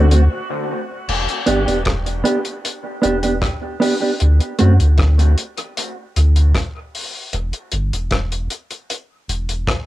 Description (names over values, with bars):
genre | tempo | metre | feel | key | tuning
dub reggae | 77 BPM | 4/4 | straight | E minor | A4 = 440 Hz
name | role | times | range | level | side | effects
mellow electric guitar | accompaniment | 0.0-4.7 s | A3 to G4 | -20 LUFS | right 2 dB | spring reverb, cassette tape, dub echo
warm sub bass | bass | 0.0-9.7 s | E1 to F#2 | -14 LUFS | equal | tube saturation
damped 70s drum kit | drums | 0.1-9.9 s | crash cymbal, hi-hat, kick drum, rim click | -22 LUFS | left 1 dB | cassette tape
room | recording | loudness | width
little or no reverb | home recording on cassette | -16 LUFS | side -15 dB against mid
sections
0.0-1.1 A section; 1.1-9.9 B section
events
break 0.3-1.1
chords
0.0 D; 1.1 Em7; 4.2 N.C.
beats
0.29 | 1.08 1.86 2.64 3.42 | 4.20 4.99 5.77 6.55 | 7.33 8.11 8.89 9.68